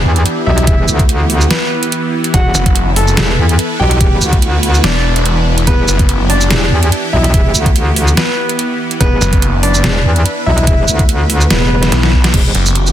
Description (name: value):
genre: heavy wobble dubstep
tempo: 144 BPM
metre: 4/4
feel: swing 54% on 16ths, half-time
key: E minor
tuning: A4 = 435 Hz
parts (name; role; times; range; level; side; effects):
- clear concert grand piano; melody; 0.0-12.3 s; B3 to A5; -19 LUFS; equal; vintage 12-bit sampler grit, tape echo
- supersaw pad; sustained chords; 0.0-12.9 s; E3 to B4; -19 LUFS; equal; phaser, sidechain pumping
- metallic wobble bass; bass; 0.0-12.5 s; E1 to E2; -12 LUFS; equal; chorus, overdrive
- dubstep drum kit; drums; 0.2-12.9 s; crash cymbal, hi-hat, shaker, snare drum; -16 LUFS; right 1 dB; none
- electronic kick drum; drums; 0.7-12.4 s; none; -12 LUFS; equal; overdrive
- snarling distorted saw bass; bass; 2.5-6.5, 9.2-12.9 s; E1 to B1; -13 LUFS; equal; distortion, overdrive
room: digital ambience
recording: dense, heavily limited modern master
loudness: -10 LUFS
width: side -11 dB against mid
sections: 0.0-12.3 A section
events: drop 0.0-12.3; drum fill 11.9-12.3; band accent 12.2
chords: 0.0 Emadd9